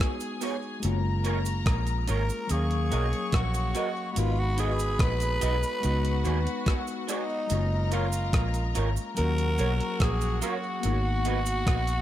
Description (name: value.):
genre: lovers rock reggae.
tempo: 72 BPM.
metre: 4/4.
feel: straight.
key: F# major.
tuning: A4 = 440 Hz.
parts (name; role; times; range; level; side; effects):
warm studio string section; second line; 0.0-12.0 s; F#4 to C#6; -37 LUFS; left 4 dB; none.
mellow tine electric piano; accompaniment; 0.0-12.0 s; F#3 to E#5; -34 LUFS; left 4 dB; slow stereo tremolo, tape echo.
gated 80s digital drum machine; drums; 0.0-12.0 s; hi-hat, kick drum, rim click; -29 LUFS; equal; tape echo.
cabasa; percussion; 0.2-12.0 s; none; -42 LUFS; right 9 dB; tape echo.
electric guitar through a small old amp; stabs; 0.4-11.4 s; G#3 to D#5; -36 LUFS; right 4 dB; ensemble chorus, tape echo.
vintage muted fingered electric bass; bass; 0.8-12.0 s; F#1 to D#2; -27 LUFS; equal; none.
growling tenor saxophone; melody; 2.1-12.0 s; D#4 to B4; -32 LUFS; right 1 dB; tape echo.
room: light reverb.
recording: none.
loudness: -25 LUFS.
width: side -12 dB against mid.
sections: 0.0-12.0 A section.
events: none.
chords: 0.0 C#7sus4; 0.8 F#maj7; 2.5 D#m7; 4.2 G#m7; 5.8 C#7sus4; 7.5 F#maj7; 9.2 D#m7; 10.8 G#m7.